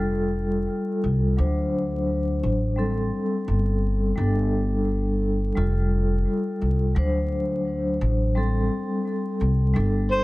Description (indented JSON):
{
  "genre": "trip hop",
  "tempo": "86 BPM",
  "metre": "4/4",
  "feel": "straight",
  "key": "A minor",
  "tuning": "A4 = 440 Hz",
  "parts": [
    { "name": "vibraphone with medium mallets", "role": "accompaniment", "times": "0.0-10.2 s", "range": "F#3 to C5", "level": "-25 LUFS", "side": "left 1 dB", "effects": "tremolo, low-pass filter, tape echo" },
    { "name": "upright bass", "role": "bass", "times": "0.0-10.2 s", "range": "F1 to D2", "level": "-23 LUFS", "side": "equal", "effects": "none" },
    { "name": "overdriven harmonica", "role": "melody", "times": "10.1-10.2 s", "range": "C5", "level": "-20 LUFS", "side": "equal", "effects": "vintage 12-bit sampler grit" }
  ],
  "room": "light reverb, studio reverb",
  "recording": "vinyl crackle",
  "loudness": "-21 LUFS",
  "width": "side -20 dB against mid",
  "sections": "0.0-10.2 A section",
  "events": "filter sweep on vibraphone 0.0-10.2",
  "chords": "0.0 Fadd9; 1.4 D7; 2.8 Am7; 4.2 Gsus2; 5.6 Fadd9; 7.0 D7; 8.4 Am7"
}